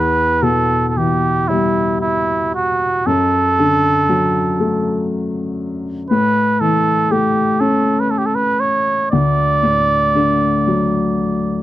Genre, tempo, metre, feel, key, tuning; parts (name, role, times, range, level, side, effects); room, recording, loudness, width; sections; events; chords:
celtic folk; 37-40 BPM (dotted quarters); 6/8; rubato; A4 = 436 Hz
trumpet with cup mute; melody; 0.0-11.6 s; E4 to D5; -16 LUFS; right 3 dB
dark upright piano; accompaniment; 0.0-11.6 s; D2 to C#4; -17 LUFS; left 2 dB
light reverb; dry, close 1970s-style studio recording; -14 LUFS; side -14 dB against mid
0.0-11.6 A section
0.0 Em; 3.1 D/F#; 6.1 A; 9.1 D